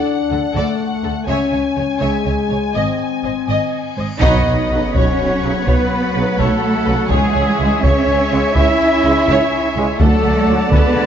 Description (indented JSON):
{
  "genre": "cinematic, epic orchestral film score",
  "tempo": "83 BPM (dotted quarters)",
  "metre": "12/8",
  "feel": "straight",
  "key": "C# minor",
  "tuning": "A4 = 440 Hz",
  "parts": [
    { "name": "warm symphonic violin section", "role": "melody", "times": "0.0-11.1 s", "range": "G#4 to G#5", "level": "-24 LUFS", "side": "left 5 dB", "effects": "none" },
    { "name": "warm symphonic violin section", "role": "second line", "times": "0.0-11.1 s", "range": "A4 to B5", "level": "-27 LUFS", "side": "left 3 dB", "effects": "none" },
    { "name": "rich symphonic viola section", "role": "accompaniment", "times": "0.0-11.1 s", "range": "F#4 to E5", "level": "-24 LUFS", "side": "right 2 dB", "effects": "none" },
    { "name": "mellow French horn section", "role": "sustained chords", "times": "0.0-11.1 s", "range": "E3 to D4", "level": "-22 LUFS", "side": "left 4 dB", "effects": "none" },
    { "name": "dark symphonic cello section", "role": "bass", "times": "0.3-11.1 s", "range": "G#2 to E4", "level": "-21 LUFS", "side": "right 2 dB", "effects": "none" },
    { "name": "warm symphonic double bass section", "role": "bass", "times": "0.3-11.0 s", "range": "G#1 to D2", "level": "-22 LUFS", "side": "right 2 dB", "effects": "none" },
    { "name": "reverse cymbal and sub drop", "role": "sound effects", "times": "3.9-7.1 s", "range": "none", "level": "-30 LUFS", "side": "equal", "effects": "none" },
    { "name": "silver concert flute", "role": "second line", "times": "4.2-11.1 s", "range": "G#4 to E5", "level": "-26 LUFS", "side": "left 1 dB", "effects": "none" },
    { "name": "mellow woodwind section", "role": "sustained chords", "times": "4.2-11.1 s", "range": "C#4 to A5", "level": "-26 LUFS", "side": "right 1 dB", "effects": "none" },
    { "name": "mellow trumpet", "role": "stabs", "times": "4.2-11.1 s", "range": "G#4 to E5", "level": "-22 LUFS", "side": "right 2 dB", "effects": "none" },
    { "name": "clear tuba", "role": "bass", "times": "4.2-11.1 s", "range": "B1 to D2", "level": "-25 LUFS", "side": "right 3 dB", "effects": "none" },
    { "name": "taiko ensemble", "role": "drums", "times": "4.2-11.1 s", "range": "none", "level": "-19 LUFS", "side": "left 1 dB", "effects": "none" },
    { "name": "clear trombone section", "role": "sustained chords", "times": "4.7-10.6 s", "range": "C#3 to G#3", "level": "-28 LUFS", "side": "right 3 dB", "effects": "none" }
  ],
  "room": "wet scoring stage reverb, RT60 1.6 s",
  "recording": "dark, warm production, nothing above 7.7 kHz",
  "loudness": "-14 LUFS",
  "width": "side -9 dB against mid",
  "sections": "0.0-4.2 A section; 4.2-11.1 A section",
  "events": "reverse cymbal 3.9; band accent 4.2-4.7; impact 4.2-7.1",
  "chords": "0.0 D; 1.3 C#m; 2.7 G#; 4.2 Badd9; 7.1 C#m; 10.0 D"
}